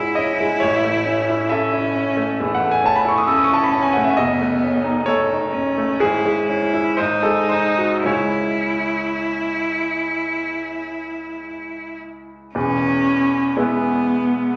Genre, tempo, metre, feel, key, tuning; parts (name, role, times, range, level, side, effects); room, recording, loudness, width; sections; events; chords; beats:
classical, romantic duo for cello and grand piano; 50-68 BPM; 4/4; rubato; C# minor; A4 = 440 Hz
clear cello; melody; 0.0-14.6 s; A3 to E4; -23 LUFS; equal
bright baby grand piano; accompaniment; 0.0-14.6 s; E1 to E6; -22 LUFS; equal
wet recital hall reverb, RT60 1.4 s; -19 LUFS; mono
0.0-12.5 A section; 12.5-14.6 B section
0.0 C#m; 0.6 A; 4.2 D#m7b5/F#; 6.0 C#m/G#; 7.0 G#7; 8.1 C#m; 12.5 E
| 0.62 1.50 2.39 3.28 | 4.16 5.06 6.00 6.97 | 8.06 9.23 10.36 11.45 | 12.55 13.57